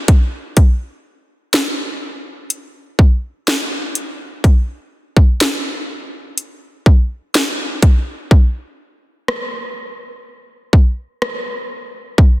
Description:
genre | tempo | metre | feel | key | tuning
R&B | 62 BPM | 4/4 | straight | none | none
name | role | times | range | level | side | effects
trap drum kit | drums | 0.1-12.4 s | hi-hat, kick drum, rim click, snare drum | -13 LUFS | equal | none
room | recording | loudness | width
light reverb | dense, heavily limited modern master | -14 LUFS | side -17 dB against mid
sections
0.0-8.3 A section; 8.3-12.4 B section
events
none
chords
none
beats
| 0.57 1.54 2.50 3.47 | 4.44 5.41 6.38 7.34 | 8.31 9.28 10.25 11.21 | 12.18

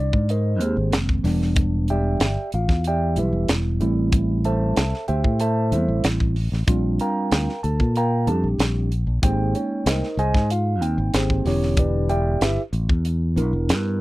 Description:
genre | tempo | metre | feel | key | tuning
electric jazz fusion | 94 BPM | 4/4 | straight | unclear | A4 = 444 Hz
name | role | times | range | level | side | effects
mellow tine electric piano | accompaniment | 0.0-14.0 s | D3 to Bb5 | -24 LUFS | right 1 dB | wide subtle chorus
fingered electric bass | bass | 0.0-14.0 s | E1 to Bb2 | -22 LUFS | equal | none
tight funk drum kit | drums | 0.1-13.8 s | hi-hat, kick drum, snare drum | -22 LUFS | equal | none
room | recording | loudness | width
little or no reverb | dry, close 1970s-style studio recording | -19 LUFS | side -18 dB against mid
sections
0.0-14.0 A section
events
none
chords
0.0 Abmaj9; 1.2 Em7; 3.8 Am7; 6.7 Bb6; 9.2 Abmaj9; 11.5 Em7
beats
0.29 0.93 | 1.57 2.21 2.85 3.49 | 4.12 4.76 5.40 6.04 | 6.67 7.31 7.95 8.59 | 9.22 9.86 10.50 11.14 | 11.78 12.41 13.05 13.69

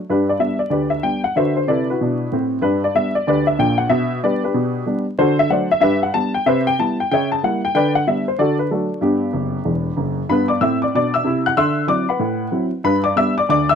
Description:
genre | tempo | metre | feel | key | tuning
jazz, stride piano | 188 BPM | 4/4 | swing 63% on 8ths | G major | A4 = 440 Hz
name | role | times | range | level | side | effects
warm upright piano | solo | 0.1-13.8 s | E1 to F#6 | -16 LUFS | left 1 dB | none
room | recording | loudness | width
light reverb | close, detailed microphones, vinyl crackle | -16 LUFS | side -7 dB against mid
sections
0.1-10.3 A section; 10.3-13.8 A section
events
upright piano fill 9.3-10.3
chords
0.1 G; 1.4 D13; 2.6 G; 3.9 G/B; 5.2 D7; 5.8 G; 6.5 Cmaj7; 7.1 C#dim7; 7.7 G/D; 8.4 D; 9.0 G; 11.6 D13; 12.8 G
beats
| 0.09 0.41 0.72 1.04 | 1.36 1.68 2.00 2.31 | 2.63 2.95 3.27 3.59 | 3.91 4.23 4.55 4.87 | 5.18 5.50 5.82 6.14 | 6.46 6.78 7.10 7.42 | 7.73 8.05 8.37 8.69 | 9.01 9.33 9.65 9.96 | 10.28 10.60 10.92 11.24 | 11.56 11.88 12.19 12.51 | 12.83 13.15 13.47

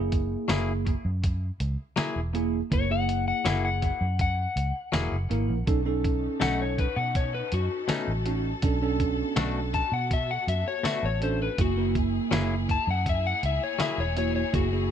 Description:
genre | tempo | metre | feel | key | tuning
straight-eighth soul blues | 81 BPM | 4/4 | straight | unclear | A4 = 439 Hz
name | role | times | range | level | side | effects
bell-like tine electric piano | accompaniment | 0.0-14.9 s | A#3 to A#4 | -29 LUFS | right 4 dB | lush chorus
vintage muted fingered electric bass | bass | 0.0-14.9 s | E1 to B2 | -29 LUFS | equal | none
lo-fi sampler-style drum kit | drums | 0.1-14.7 s | hi-hat, kick drum, snare drum, tambourine | -29 LUFS | equal | none
direct-recorded clean electric guitar | stabs | 0.5-14.0 s | B2 to G#4 | -32 LUFS | left 4 dB | tape echo
electric slide guitar | melody | 2.7-14.9 s | F#4 to A5 | -30 LUFS | left 6 dB | plate reverb
warm studio string section | sustained chords | 5.7-14.9 s | A#3 to A4 | -37 LUFS | left 2 dB | none
room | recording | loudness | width
light reverb | none | -24 LUFS | side -9 dB against mid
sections
0.0-14.9 A section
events
none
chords
0.0 F#9; 5.7 B9; 8.6 Bm7; 11.6 F#9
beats
0.49 1.24 1.98 | 2.71 3.46 4.20 4.93 | 5.67 6.41 7.15 7.89 | 8.63 9.37 10.11 10.85 | 11.58 12.32 13.06 13.80 | 14.54

